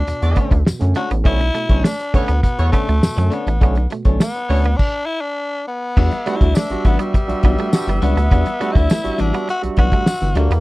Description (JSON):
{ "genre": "funk", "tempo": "102 BPM", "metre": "4/4", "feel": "straight", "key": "unclear", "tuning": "A4 = 435 Hz", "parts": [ { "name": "growling tenor saxophone", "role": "melody", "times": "0.0-10.6 s", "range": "G3 to F#4", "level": "-23 LUFS", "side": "left 2 dB", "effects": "none" }, { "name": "clean electric guitar", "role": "riff", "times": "0.0-10.6 s", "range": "F#3 to B3", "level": "-27 LUFS", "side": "right 6 dB", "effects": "none" }, { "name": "rubbery square bass", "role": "bass", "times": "0.0-10.6 s", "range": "G1 to F#2", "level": "-17 LUFS", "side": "equal", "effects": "none" }, { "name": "barky tine electric piano", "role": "stabs", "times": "0.1-10.5 s", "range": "B2 to F#4", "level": "-26 LUFS", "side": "right 3 dB", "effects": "none" }, { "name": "cloth-damped thuddy drum kit", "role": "drums", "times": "0.1-10.6 s", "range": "crash cymbal, hi-hat, kick drum, snare drum", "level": "-16 LUFS", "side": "equal", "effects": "none" }, { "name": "mellow horn section", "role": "second line", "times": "0.2-10.3 s", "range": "G3 to E5", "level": "-28 LUFS", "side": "equal", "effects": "none" }, { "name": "electric guitar at the edge of break-up", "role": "accompaniment", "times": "0.2-10.5 s", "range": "G3 to C#5", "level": "-26 LUFS", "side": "left 5 dB", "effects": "none" }, { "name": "tambourine", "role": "percussion", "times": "0.7-10.2 s", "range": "none", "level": "-35 LUFS", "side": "left 3 dB", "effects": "none" } ], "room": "little or no reverb", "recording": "dark, warm production", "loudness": "-15 LUFS", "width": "side -20 dB against mid", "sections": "0.0-6.0 A section; 6.0-10.6 B section", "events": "stop 4.8-6.0", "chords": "0.0 Bm9; 6.0 Em9" }